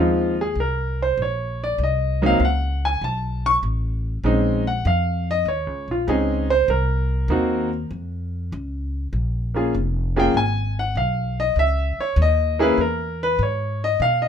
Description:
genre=jazz piano trio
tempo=98 BPM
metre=4/4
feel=swing 69% on 8ths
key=Bb phrygian from 9.1 s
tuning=A4 = 438 Hz
part: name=clear concert grand piano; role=melody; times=0.0-14.3 s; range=F3 to C#6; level=-20 LUFS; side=equal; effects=none
part: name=upright bass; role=bass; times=0.0-14.3 s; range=F1 to B2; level=-23 LUFS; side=equal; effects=none
room=light reverb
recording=minimal, uncompressed stereo recording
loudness=-19 LUFS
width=side -8 dB against mid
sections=0.0-9.1 A section; 9.1-14.3 A section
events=grand piano solo 0.0-14.3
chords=0.0 Dbmaj9; 1.8 Cdim; 3.0 Asus2; 4.2 Bbm11; 6.7 Cm7b5; 7.9 Db; 9.1 Bb7(no3); 11.6 Dbm69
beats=0.57 1.18 | 1.79 2.40 3.01 3.62 | 4.24 4.85 5.46 6.07 | 6.68 7.29 7.90 8.51 | 9.12 9.73 10.34 10.95 | 11.56 12.17 12.78 13.39 | 14.00

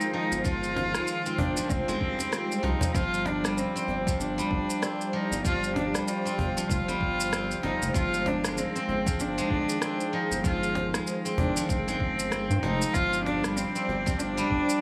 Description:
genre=organic downtempo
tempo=96 BPM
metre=4/4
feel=swing 59% on 16ths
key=unclear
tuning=A4 = 442 Hz
part: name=rich cello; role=melody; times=0.0-14.8 s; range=C4 to F4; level=-32 LUFS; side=equal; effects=digital delay
part: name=warm analog pad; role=sustained chords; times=0.0-14.8 s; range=Eb3 to D5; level=-37 LUFS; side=equal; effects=chorus, sidechain pumping
part: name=steel-string zither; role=arpeggios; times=0.0-14.8 s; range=F3 to C4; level=-34 LUFS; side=equal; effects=digital delay
part: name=electronic shaker and rim click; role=drums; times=0.0-14.8 s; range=none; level=-37 LUFS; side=equal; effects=none
part: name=round analog bass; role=bass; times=0.3-14.6 s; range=F1 to G2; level=-36 LUFS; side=equal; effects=sidechain pumping
part: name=electronic kick drum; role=drums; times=0.4-14.7 s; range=none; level=-32 LUFS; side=equal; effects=none
part: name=cajon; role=percussion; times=0.8-14.0 s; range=none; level=-34 LUFS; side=equal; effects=none
part: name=swell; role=sound effects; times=2.0-2.9 s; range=none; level=-43 LUFS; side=equal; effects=none
room=light reverb, studio reverb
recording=small room ambience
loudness=-28 LUFS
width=mono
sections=0.0-14.8 A section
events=none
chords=0.0 Ab6/G; 2.9 G7sus4; 7.9 Ab6/G; 12.9 G7sus4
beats=| 0.45 1.07 1.70 2.32 | 2.95 3.57 4.20 4.82 | 5.45 6.07 6.70 7.32 | 7.95 8.57 9.20 9.82 | 10.45 11.07 11.70 12.32 | 12.95 13.57 14.20

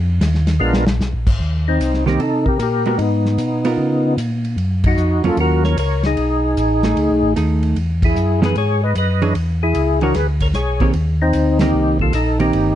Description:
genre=soul jazz organ trio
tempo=151 BPM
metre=4/4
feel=swing 66% on 8ths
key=unclear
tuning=A4 = 441 Hz
part: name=mellow tonewheel organ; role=bass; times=0.0-12.8 s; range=G1 to Db3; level=-18 LUFS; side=equal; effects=chorus vibrato, slow rotary speaker
part: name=warm soul drum kit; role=drums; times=0.2-12.7 s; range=crash cymbal, hi-hat, kick drum, ride cymbal, snare drum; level=-23 LUFS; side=equal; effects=none
part: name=percussive tonewheel organ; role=melody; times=0.6-12.8 s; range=Ab3 to D#5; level=-19 LUFS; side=left 2 dB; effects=chorus vibrato, slow rotary speaker, plate reverb
part: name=hollow-body jazz guitar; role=accompaniment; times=2.1-12.8 s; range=Eb3 to Db5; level=-20 LUFS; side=right 4 dB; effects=none
room=light reverb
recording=dark, warm production, nothing above 10.7 kHz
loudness=-15 LUFS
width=side -11 dB against mid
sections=0.0-1.4 A section; 1.4-12.8 B section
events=drum fill 0.6-1.0; band accent 4.8, 8.0, 11.5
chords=0.0 Ebsus2; 0.6 Bb7b9; 1.4 Eb6; 3.0 Abmadd9; 3.8 Db13; 4.6 Gbmaj7; 6.2 B13; 7.8 Emaj7; 9.4 E13; 10.9 Eb6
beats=0.22 0.61 1.01 | 1.41 1.80 2.20 2.60 | 3.00 3.39 3.79 4.19 | 4.58 4.98 5.38 5.78 | 6.17 6.57 6.97 7.36 | 7.76 8.16 8.56 8.95 | 9.35 9.75 10.15 10.54 | 10.94 11.34 11.74 12.13 | 12.53

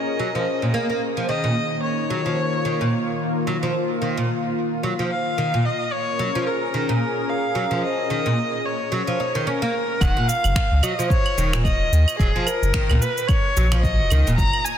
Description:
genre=organic downtempo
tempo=110 BPM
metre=4/4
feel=swing 57% on 16ths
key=Eb minor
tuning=A4 = 440 Hz
part: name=rich kamancheh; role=melody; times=0.0-14.8 s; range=Ab4 to Bb5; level=-25 LUFS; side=left 1 dB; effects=vintage 12-bit sampler grit, tape echo, shimmer reverb
part: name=warm analog pad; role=sustained chords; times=0.0-10.0 s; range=Eb3 to Bb4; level=-26 LUFS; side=left 1 dB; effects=chorus, sidechain pumping, shimmer reverb
part: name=oud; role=arpeggios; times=0.2-14.4 s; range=Bb2 to Eb4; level=-24 LUFS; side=right 1 dB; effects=tape echo, shimmer reverb
part: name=warm sub bass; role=bass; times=10.0-14.5 s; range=Eb1 to Eb2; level=-19 LUFS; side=equal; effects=none
part: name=electronic claves, cabasa and finger snaps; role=drums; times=10.0-14.8 s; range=none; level=-28 LUFS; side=right 4 dB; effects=overdrive, studio ambience, soft clipping on snare
part: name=electronic kick drum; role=drums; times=10.0-14.5 s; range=none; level=-21 LUFS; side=equal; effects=studio ambience
room=moderate echo chamber reverb, RT60 2.0 s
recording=dense, heavily limited modern master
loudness=-19 LUFS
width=side -9 dB against mid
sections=0.0-10.0 A section; 10.0-14.8 B section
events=none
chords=0.0 Gb6 (rootless); 10.0 Ebm7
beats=0.20 0.74 | 1.29 1.83 2.38 2.92 | 3.47 4.01 4.56 5.11 | 5.65 6.20 6.74 7.29 | 7.83 8.38 8.92 9.47 | 10.02 10.56 11.11 11.65 | 12.20 12.74 13.29 13.83 | 14.38

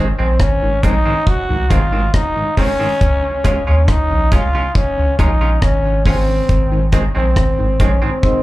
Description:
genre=roots reggae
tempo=69 BPM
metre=4/4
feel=straight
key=Db major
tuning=A4 = 441 Hz
part: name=mellow tonewheel organ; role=accompaniment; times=0.0-8.1 s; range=Ab2 to F4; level=-25 LUFS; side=left 2 dB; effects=chorus vibrato, slow rotary speaker, slapback echo
part: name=semi-hollow electric guitar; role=accompaniment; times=0.0-8.1 s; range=Eb3 to F4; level=-25 LUFS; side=right 3 dB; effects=tape echo, slapback echo
part: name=soft dub sub bass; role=bass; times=0.0-8.0 s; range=Ab1 to Eb2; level=-16 LUFS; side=equal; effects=none
part: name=growling trombone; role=melody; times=0.2-8.4 s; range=C4 to Gb4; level=-19 LUFS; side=equal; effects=tape echo, slapback echo
part: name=deep reggae drum kit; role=drums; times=0.4-8.4 s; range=hi-hat, kick drum, rim click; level=-16 LUFS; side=equal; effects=none
part: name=mellow trombone section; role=second line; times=8.2-8.4 s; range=Ab2 to C4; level=-16 LUFS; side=left 1 dB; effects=none
room=light reverb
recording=live gig heard through the venue's PA, club reverb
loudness=-13 LUFS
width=side -17 dB against mid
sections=0.0-8.4 A section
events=band accent 6.5-8.4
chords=0.0 Ab; 3.0 Db; 6.5 Ab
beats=0.40 1.27 2.14 | 3.01 3.88 4.75 5.62 | 6.49 7.37 8.23

